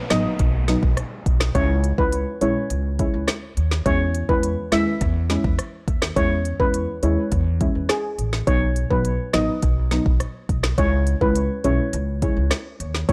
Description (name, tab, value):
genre	dancehall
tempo	104 BPM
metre	4/4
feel	straight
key	E major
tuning	A4 = 440 Hz
part	downlifter	sound effects	0.0-3.9 s	none	-40 LUFS	equal	none
part	steel pan	melody	0.1-13.1 s	G#4 to E5	-28 LUFS	equal	analog delay
part	deep mellow chord stab	accompaniment	0.1-13.1 s	F#3 to E4	-27 LUFS	equal	chorus, sidechain pumping
part	upright bass	bass	0.1-13.1 s	A1 to E2	-25 LUFS	equal	none
part	afro-pop drum kit	drums	0.1-13.1 s	hi-hat, kick drum, rim click, snare drum	-26 LUFS	equal	none
room	digital ambience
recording	dry, gritty hardware recording, cassette tape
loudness	-21 LUFS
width	mono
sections	0.0-13.1 A section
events	none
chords	0.0 B; 1.5 C#m; 3.9 E6; 8.5 B; 10.8 C#m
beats	0.40 0.97 | 1.55 2.13 2.70 3.28 | 3.86 4.43 5.01 5.59 | 6.17 6.74 7.32 7.89 | 8.47 9.05 9.63 10.20 | 10.78 11.36 11.93 12.51 | 13.09